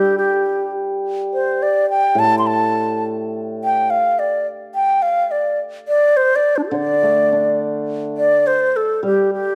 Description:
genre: chinese traditional, Chinese chamber ensemble.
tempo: 105 BPM.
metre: 2/4.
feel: rubato.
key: D yu mode.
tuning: A4 = 441 Hz.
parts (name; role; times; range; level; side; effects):
bright xiao; melody; 0.0-9.6 s; D4 to C6; -18 LUFS; equal; none.
hammered dulcimer; accompaniment; 0.0-3.9, 6.7-9.6 s; A2 to D4; -25 LUFS; equal; none.
room: moderate scoring stage reverb, RT60 1.7 s.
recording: none.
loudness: -18 LUFS.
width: mono.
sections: 0.0-7.9 A section; 7.9-9.6 A section.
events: none.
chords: none.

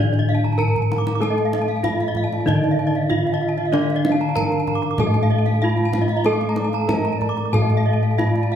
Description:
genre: Balinese gamelan.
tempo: 95 BPM.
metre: 4/4.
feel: straight.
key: D pelog.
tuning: A4 = 441 Hz.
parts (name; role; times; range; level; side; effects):
gamelan-type bronze metallophone; melody; 0.0-8.6 s; D4 to Bb4-20c; -24 LUFS; right 1 dB; slapback echo.
gamelan-type bronze metallophone; accompaniment; 0.0-8.6 s; D3 to A3-30c; -27 LUFS; left 2 dB; none.
gamelan-type bronze metallophone; arpeggios; 0.0-8.5 s; D5 to D6; -28 LUFS; left 4 dB; none.
gamelan-type bronze metallophone; arpeggios; 0.0-8.6 s; D5 to D6; -27 LUFS; right 4 dB; none.
gamelan-type bossed gongs; bass; 0.0-8.6 s; A2-30c to A4-30c; -22 LUFS; left 1 dB; none.
kendang; percussion; 0.1-8.4 s; none; -27 LUFS; right 1 dB; none.
bright reedy xiao; second line; 2.2-8.6 s; D5 to Bb5; -32 LUFS; left 2 dB; none.
room: moderate recital hall reverb, RT60 1.4 s.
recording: none.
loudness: -17 LUFS.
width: side -9 dB against mid.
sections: 0.0-8.6 A section.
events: drum fill 0.4-1.2.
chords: none.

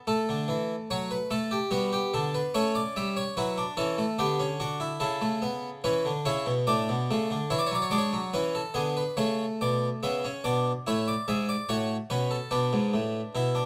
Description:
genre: classical, baroque-style 3-part fugue for harpsichord.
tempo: 72 BPM.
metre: 3/4.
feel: straight.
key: unclear.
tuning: A4 = 442 Hz.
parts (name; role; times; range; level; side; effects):
harpsichord; solo; 0.0-13.7 s; G#2 to E5; -28 LUFS; equal; none.
room: moderate large studio reverb, RT60 1.0 s.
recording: none.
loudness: -28 LUFS.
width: mono.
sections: 0.0-10.0 A section; 10.0-13.7 B section.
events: none.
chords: 0.1 D; 1.7 G; 2.5 A7; 4.2 D; 5.0 A/C#; 6.7 D5/A; 7.5 E7; 9.2 A/C#; 10.0 A; 11.7 F#m/A; 12.5 Bm.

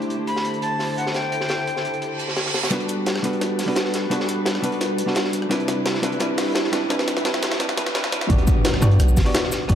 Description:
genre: liquid drum and bass.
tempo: 172 BPM.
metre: 4/4.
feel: straight.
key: G major.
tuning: A4 = 440 Hz.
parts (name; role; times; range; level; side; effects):
hollow-body jazz guitar; accompaniment; 0.0-9.8 s; G3 to D5; -24 LUFS; equal; tape echo.
dark studio string section; sustained chords; 0.0-8.3 s; C3 to C5; -29 LUFS; left 1 dB; vintage 12-bit sampler grit.
crunchy breakbeat drum kit; drums; 0.0-9.8 s; hi-hat, snare drum; -28 LUFS; equal; high-pass filter on hats, high-pass filter on snare, high-pass filter on room.
breathy bright jazz flute; melody; 0.3-2.3 s; F#5 to B5; -28 LUFS; left 1 dB; tape echo.
reverse cymbal, riser and impact; sound effects; 2.1-9.7 s; none; -30 LUFS; right 1 dB; none.
jungle sampler-style drum kit; drums; 2.7-9.8 s; hi-hat, rim click, shaker, snare drum; -26 LUFS; equal; high-pass filter on snare, low-pass filter on snare, high-pass filter on hats, low-pass filter on hats, high-pass filter on perc, low-pass filter on perc, high-pass filter on room, low-pass filter on room.
long sustained 808-style bass; bass; 8.3-9.8 s; G1 to G2; -16 LUFS; equal; none.
electronic kick drum; drums; 8.3-9.8 s; none; -18 LUFS; equal; overdrive.
room: moderate lush hall reverb, RT60 2.2 s.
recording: dark, warm production, high-pass filter.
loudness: -19 LUFS.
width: side -10 dB against mid.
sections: 0.0-2.7 A section; 2.7-8.3 B section; 8.3-9.8 C section.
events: reverse cymbal 2.1-2.7; build-up 2.7-8.3; drum fill 2.7-8.3; filter sweep 2.7-8.3; drop 8.3-9.8; impact 8.3-9.7.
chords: 0.0 D9sus4; 2.7 Gmaj7; 5.5 Cmaj9; 8.3 Gmaj7.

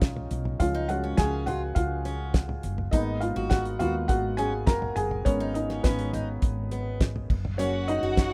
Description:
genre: piano-driven pop.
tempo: 103 BPM.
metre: 4/4.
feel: straight.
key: unclear.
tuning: A4 = 443 Hz.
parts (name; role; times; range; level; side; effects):
felt-muted upright piano; accompaniment; 0.0-8.3 s; E#3 to A#5; -31 LUFS; equal; none.
woody fretless electric bass; bass; 0.0-8.3 s; F#1 to D#2; -34 LUFS; equal; none.
damped 70s drum kit; drums; 0.0-8.3 s; crash cymbal, hi-hat, kick drum, snare drum, toms; -28 LUFS; equal; none.
picked steel-string acoustic guitar; riff; 0.7-8.3 s; B3 to F#4; -38 LUFS; equal; none.
dark studio violin section; second line; 7.6-8.3 s; F#4 to F#5; -35 LUFS; equal; none.
room: small room ambience.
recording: rough home demo mix.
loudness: -27 LUFS.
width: mono.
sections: 0.0-8.3 A section.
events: felt piano solo 0.0-8.3.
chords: 0.0 C#; 2.9 G#madd9; 7.3 D#m.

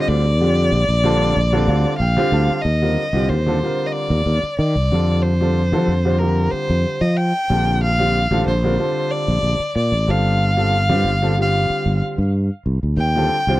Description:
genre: electric jazz fusion.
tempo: 93 BPM.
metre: 4/4.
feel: straight.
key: Bb major.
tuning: A4 = 440 Hz.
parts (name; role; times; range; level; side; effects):
dark violin; melody; 0.0-13.6 s; Bb4 to G5; -21 LUFS; left 1 dB; none.
clear concert grand piano; accompaniment; 0.0-13.6 s; D3 to A5; -22 LUFS; equal; none.
sustaining fretless electric bass; bass; 0.1-13.6 s; G1 to F3; -18 LUFS; equal; none.
room: little or no reverb.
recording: dry, close 1970s-style studio recording.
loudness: -16 LUFS.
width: side -16 dB against mid.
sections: 0.0-2.7 A section; 2.7-13.6 B section.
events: grand piano fill 0.7-2.7.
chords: 0.0 Bbmaj9; 2.7 Eb69; 4.9 Fadd9; 7.5 Bbmaj7; 10.1 G5; 13.0 Eb69.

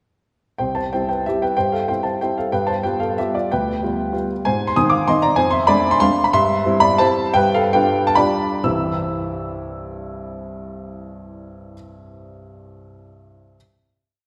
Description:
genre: classical, piano waltz.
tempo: 124-201 BPM.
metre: 3/4.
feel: rubato.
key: C major.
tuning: A4 = 440 Hz.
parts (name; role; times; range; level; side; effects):
warm upright piano; solo; 0.6-13.6 s; C2 to E6; -19 LUFS; equal; none.
room: wet church reverb, RT60 2.6 s.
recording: recorded in a church or concert hall.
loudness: -19 LUFS.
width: mono.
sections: 0.6-8.6 A section; 8.6-11.4 final chord.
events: slowing down 5.8-8.6.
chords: 0.6 C; 2.5 G7; 4.4 Ab; 5.4 Dm7b5/F; 6.3 C/G; 7.4 G7; 8.6 C.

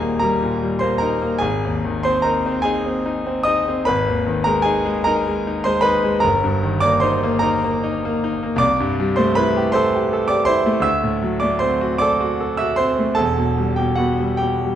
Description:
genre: classical, romantic nocturne for solo piano.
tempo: 44-56 BPM (dotted quarters).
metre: 6/8.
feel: rubato.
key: Eb major.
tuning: A4 = 436 Hz.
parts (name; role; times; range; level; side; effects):
clear concert grand piano; solo; 0.0-14.8 s; Eb1 to E6; -17 LUFS; equal; none.
room: moderate recital hall reverb, RT60 1.3 s.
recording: none.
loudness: -17 LUFS.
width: side -10 dB against mid.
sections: 0.0-14.8 A section.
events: none.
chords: 0.0 Eb; 1.4 Ab; 3.9 Abm; 6.2 Eb/G; 8.6 Am7/C; 10.9 D7; 13.2 Em.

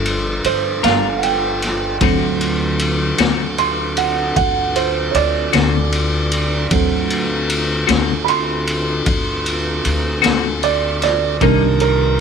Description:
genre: slow blues.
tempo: 51 BPM (dotted quarters).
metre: 12/8.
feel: straight.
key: unclear.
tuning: A4 = 440 Hz.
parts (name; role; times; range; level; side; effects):
dark grand piano; accompaniment; 0.0-12.2 s; Eb3 to C6; -19 LUFS; right 11 dB; none.
tonewheel organ; sustained chords; 0.0-12.2 s; C4 to Bb4; -23 LUFS; equal; slow rotary speaker.
upright bass; bass; 0.0-12.2 s; G1 to D2; -22 LUFS; left 2 dB; none.
raw garage drum kit; drums; 0.1-12.0 s; kick drum, ride cymbal, snare drum; -20 LUFS; left 1 dB; none.
clean electric guitar; accompaniment; 0.8-11.7 s; C3 to Bb4; -18 LUFS; left 15 dB; harmonic tremolo.
room: moderate spring reverb, RT60 2.2 s.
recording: 1960s-style stereo with parts hard left and right.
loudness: -15 LUFS.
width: side -6 dB against mid.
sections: 0.0-12.2 A section.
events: grand piano solo 0.0-12.2.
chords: 0.0 Gm7; 2.0 D7; 11.4 Cm7.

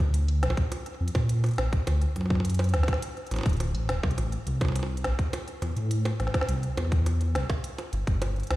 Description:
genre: IDM.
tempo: 104 BPM.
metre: 4/4.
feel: straight.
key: A dorian.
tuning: A4 = 440 Hz.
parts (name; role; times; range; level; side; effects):
dark detuned saw bass; bass; 0.0-8.6 s; D1 to Bb2; -26 LUFS; equal; none.
electronic kick drum; drums; 0.0-8.2 s; none; -28 LUFS; equal; none.
organic electronic drum kit; drums; 0.0-8.6 s; bongos, hi-hat, snare drum; -33 LUFS; right 1 dB; digital delay.
room: little or no reverb.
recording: played on a big sound system in a bare room, stone room reverb.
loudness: -25 LUFS.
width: side -17 dB against mid.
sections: 0.0-8.6 A section.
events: none.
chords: none.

